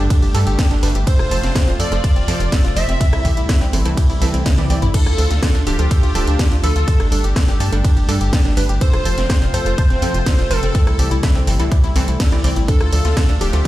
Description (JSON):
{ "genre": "progressive house", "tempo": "124 BPM", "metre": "4/4", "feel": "straight", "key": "D minor", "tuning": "A4 = 440 Hz", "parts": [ { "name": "warm analog pad", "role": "sustained chords", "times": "0.0-13.7 s", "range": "C3 to G4", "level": "-28 LUFS", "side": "right 1 dB", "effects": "chorus, sidechain pumping" }, { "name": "glassy wavetable pluck", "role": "arpeggios", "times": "0.0-13.7 s", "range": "C4 to A5", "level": "-26 LUFS", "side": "left 1 dB", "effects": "chorus, sidechain pumping, digital delay" }, { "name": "wide unison pluck", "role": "stabs", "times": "0.0-13.6 s", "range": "G2 to D5", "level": "-26 LUFS", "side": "right 3 dB", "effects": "sidechain pumping, digital delay" }, { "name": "tight sequencer bass", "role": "bass", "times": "0.0-13.6 s", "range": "D1 to G2", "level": "-18 LUFS", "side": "equal", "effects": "sidechain pumping" }, { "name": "electronic kick drum", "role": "drums", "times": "0.1-13.7 s", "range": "none", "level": "-15 LUFS", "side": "equal", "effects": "none" }, { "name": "house drum kit", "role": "drums", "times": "0.1-13.7 s", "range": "crash cymbal, hi-hat, ride cymbal, rim click, snare drum, toms", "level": "-25 LUFS", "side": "left 1 dB", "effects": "none" }, { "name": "plucky unison lead", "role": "melody", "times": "1.1-13.7 s", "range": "G4 to E5", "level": "-26 LUFS", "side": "equal", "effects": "digital delay" }, { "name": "soft supersaw", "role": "second line", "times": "1.1-13.7 s", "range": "G4 to E5", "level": "-29 LUFS", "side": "equal", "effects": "wide subtle chorus, sidechain pumping, digital delay" } ], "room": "little or no reverb", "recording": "played on a big sound system in a bare room, large studio reverb", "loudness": "-14 LUFS", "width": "side -15 dB against mid", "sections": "0.0-4.9 A section; 4.9-13.7 A section", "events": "drop 0.0-4.9, 4.9-13.7; drum fill 4.5-4.9", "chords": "0.0 Gsus2; 1.1 F; 3.0 C6; 4.9 Dm; 6.9 Gsus2; 8.8 F; 10.7 C6; 12.7 Dm" }